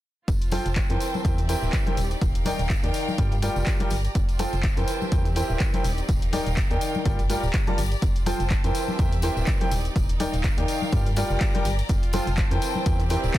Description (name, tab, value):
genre	piano house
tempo	124 BPM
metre	4/4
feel	swing 56% on 16ths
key	F major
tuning	A4 = 443 Hz
part	organ-like FM bass	bass	0.3-13.3 s	D1 to G2	-26 LUFS	equal	sidechain pumping
part	electronic kick drum	drums	0.3-13.4 s	none	-24 LUFS	equal	none
part	punchy analog drum machine	drums	0.3-13.4 s	handclaps, hi-hat	-34 LUFS	left 1 dB	none
part	tambourine and congas	percussion	0.3-13.4 s	none	-35 LUFS	left 3 dB	none
part	clear studio string section	texture	0.3-13.4 s	C4 to Bb5	-34 LUFS	equal	sidechain pumping
part	clear upright piano	riff	0.5-13.4 s	Eb3 to A5	-29 LUFS	equal	sidechain pumping, tape echo
room	small room ambience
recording	dense, heavily limited modern master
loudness	-22 LUFS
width	side -15 dB against mid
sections	0.3-13.4 A section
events	none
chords	0.3 Fadd9; 1.0 C7/E; 2.0 Ebmaj7; 3.2 Gm7; 4.2 Fadd9; 4.9 C7/E; 5.8 Ebmaj7; 7.1 Gm7; 8.0 Fadd9; 8.7 C7/E; 9.7 Ebmaj7; 10.9 Gm7; 11.9 Fadd9; 12.6 C7/E